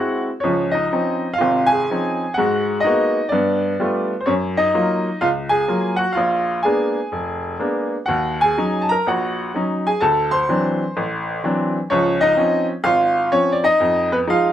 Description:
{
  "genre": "solo jazz",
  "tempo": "126 BPM",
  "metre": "4/4",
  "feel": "swing 66% on 8ths, rubato",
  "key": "Db major",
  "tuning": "A4 = 440 Hz",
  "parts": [
    { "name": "bright upright piano", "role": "solo", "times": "0.0-14.5 s", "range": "F1 to C6", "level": "-17 LUFS", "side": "equal", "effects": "none" }
  ],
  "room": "light reverb",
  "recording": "none",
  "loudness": "-17 LUFS",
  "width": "side -11 dB against mid",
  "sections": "0.4-14.5 A section",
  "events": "none",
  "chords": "0.4 Dbmaj9; 2.4 Abm9; 3.3 G9; 4.3 Gbmaj7; 6.2 Bb7b9; 8.1 Ebm7; 10.0 D9; 11.9 Dbmaj7; 13.8 Fm7b5"
}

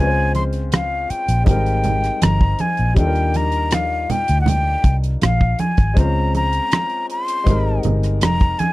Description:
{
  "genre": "lush 1970s-style soul",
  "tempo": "80 BPM",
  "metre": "4/4",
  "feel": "straight",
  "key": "Eb major",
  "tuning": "A4 = 440 Hz",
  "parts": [
    { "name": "breathy concert flute", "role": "melody", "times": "0.0-8.7 s", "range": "F5 to C6", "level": "-21 LUFS", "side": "left 1 dB", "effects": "none" },
    { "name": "warm grand piano", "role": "accompaniment", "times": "0.0-8.7 s", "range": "G3 to C5", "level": "-26 LUFS", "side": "left 3 dB", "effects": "none" },
    { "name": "vintage muted fingered electric bass", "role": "bass", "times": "0.0-8.5 s", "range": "F1 to Eb2", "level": "-19 LUFS", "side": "equal", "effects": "tube saturation" },
    { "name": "damped 70s drum kit", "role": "drums", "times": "0.3-8.7 s", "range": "hi-hat, kick drum, rim click", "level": "-16 LUFS", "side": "equal", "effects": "none" },
    { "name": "congas", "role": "percussion", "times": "0.4-8.7 s", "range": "none", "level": "-23 LUFS", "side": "right 3 dB", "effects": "none" }
  ],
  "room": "little or no reverb",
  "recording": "dry, close 1970s-style studio recording",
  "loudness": "-16 LUFS",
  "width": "side -18 dB against mid",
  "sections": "0.0-8.7 A section",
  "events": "none",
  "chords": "0.0 Dbmaj7; 1.5 Abmaj9; 3.0 Ebmaj9; 6.0 Dbmaj7; 7.5 Abmaj9"
}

